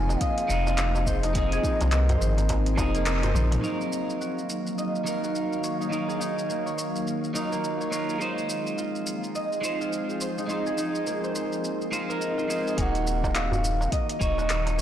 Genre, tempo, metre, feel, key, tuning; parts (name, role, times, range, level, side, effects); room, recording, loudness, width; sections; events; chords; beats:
organic downtempo; 105 BPM; 4/4; swing 60% on 16ths; Eb dorian; A4 = 439 Hz
mellow hollow bansuri; melody; 0.0-3.3, 12.2-14.8 s; Eb5 to Ab5; -31 LUFS; left 1 dB; digital delay
electric guitar at the edge of break-up; accompaniment; 0.0-14.8 s; F3 to F5; -32 LUFS; right 2 dB; phaser, sidechain pumping, digital delay
ethereal airy pad; sustained chords; 0.0-14.8 s; Eb3 to F5; -33 LUFS; left 2 dB; ensemble chorus, built-in reverb, sidechain pumping
concert harp; arpeggios; 0.0-14.8 s; Bb3 to Eb5; -31 LUFS; right 1 dB; low-pass filter, digital delay
warm sub bass; bass; 0.0-3.6, 12.8-14.8 s; Eb1 to C2; -25 LUFS; equal; sidechain pumping
wind-like tuned noise texture; texture; 0.0-3.7 s; Bb3 to C6; -43 LUFS; left 3 dB
deep house drum kit; drums; 0.1-14.8 s; handclaps, hi-hat, shaker, toms; -33 LUFS; equal
darbuka; percussion; 0.1-3.6, 13.2-14.8 s; -35 LUFS; right 2 dB
electronic kick drum; drums; 0.2-2.9, 12.8-14.3 s; -29 LUFS; equal
moderate concert hall reverb, RT60 1.8 s; blown-out, overdriven recording, overdrive; -24 LUFS; side -10 dB against mid
0.0-3.6 A section; 3.6-12.8 B section; 12.8-14.8 A section
band accent 3.1; drum fill 3.4; filter sweep on harp 3.6-12.8
0.0 Fm7; 3.6 Ebmadd9; 8.2 Fm7; 12.8 Ebmadd9
0.21 0.78 | 1.35 1.92 2.49 3.06 | 3.63 4.21 4.78 5.35 | 5.92 6.49 7.06 7.63 | 8.21 8.78 9.35 9.92 | 10.49 11.06 11.63 12.21 | 12.78 13.35 13.92 14.49